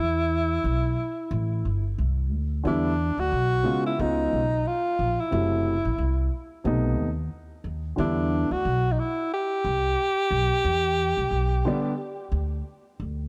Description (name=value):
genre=hip hop, jazz-hop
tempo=90 BPM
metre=4/4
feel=swing 58% on 16ths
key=E minor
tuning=A4 = 440 Hz
part: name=breathy tenor saxophone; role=melody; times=0.0-12.6 s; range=D4 to G4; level=-28 LUFS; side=equal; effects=none
part: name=upright bass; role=bass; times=0.0-13.3 s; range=F#1 to E2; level=-29 LUFS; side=equal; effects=none
part: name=dark upright piano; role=accompaniment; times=2.6-11.9 s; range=C3 to F4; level=-30 LUFS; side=equal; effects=none
room=light reverb, small room ambience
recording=dark, warm production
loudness=-25 LUFS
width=mono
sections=0.0-2.6 A section; 2.6-13.3 B section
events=break 0.0-2.6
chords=0.0 Em7; 4.0 C#7; 5.3 F#m7b5; 6.7 B7b9; 8.0 Em7